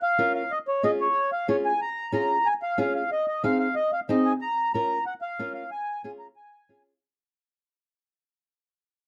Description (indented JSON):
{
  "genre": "latin",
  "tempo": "184 BPM",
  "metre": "4/4",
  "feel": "straight",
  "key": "unclear",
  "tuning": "A4 = 440 Hz",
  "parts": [
    { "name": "mellow accordion", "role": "melody", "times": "0.0-6.8 s", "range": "Db5 to Bb5", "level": "-28 LUFS", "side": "equal", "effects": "none" },
    { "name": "nylon-string guitar", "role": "accompaniment", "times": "0.2-6.9 s", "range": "C4 to Bb4", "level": "-29 LUFS", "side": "equal", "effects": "none" }
  ],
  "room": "light reverb",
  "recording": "close, detailed microphones",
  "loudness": "-26 LUFS",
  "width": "mono",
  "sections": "0.0-4.4 A section; 4.4-7.0 B section",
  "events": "fade-out 4.4-7.0",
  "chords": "0.0 Bbm; 0.5 Db; 3.1 Ab; 4.4 Bbm; 5.7 Db",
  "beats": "0.18 | 0.51 0.84 1.16 1.49 | 1.81 2.14 2.46 2.79 | 3.12 3.44 3.77 4.09 | 4.42 4.74 5.07 5.39 | 5.72 6.05 6.37 6.70"
}